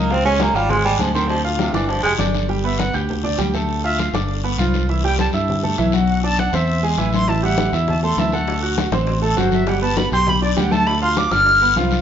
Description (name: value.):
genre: Afro-Cuban jazz.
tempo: 201 BPM.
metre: 4/4.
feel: straight.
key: G major.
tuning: A4 = 440 Hz.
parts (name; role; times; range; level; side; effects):
mellow baritone saxophone; second line; 0.0-2.1 s; A2 to Db4; -20 LUFS; right 2 dB; none.
clear baby grand piano; accompaniment; 0.0-12.0 s; E3 to G6; -22 LUFS; right 3 dB; none.
fingered electric bass; bass; 0.0-12.0 s; F1 to G2; -21 LUFS; left 1 dB; none.
bongos; percussion; 0.1-2.3, 7.3-11.9 s; none; -31 LUFS; left 5 dB; none.
congas; percussion; 0.1-12.0 s; none; -25 LUFS; left 4 dB; none.
guiro; percussion; 0.1-12.0 s; none; -30 LUFS; left 7 dB; none.
breathy bright jazz flute; melody; 2.7-11.8 s; A4 to F6; -20 LUFS; equal; none.
room: moderate large studio reverb, RT60 1.2 s.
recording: band playing live in one room, nothing above 7.6 kHz.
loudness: -16 LUFS.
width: side -9 dB against mid.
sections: 0.0-2.5 A section; 2.5-12.0 A section.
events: baritone saxophone solo 0.0-2.5; flute solo 2.5-12.0.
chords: 0.1 Dbmaj7; 1.3 Dm7; 1.9 G5; 2.5 Gadd9; 3.7 Dm; 4.3 G7; 4.9 C6; 6.1 Bm; 6.7 Eaug; 7.3 A5; 8.5 D7; 9.7 Gadd9; 10.9 Dm; 11.5 G7.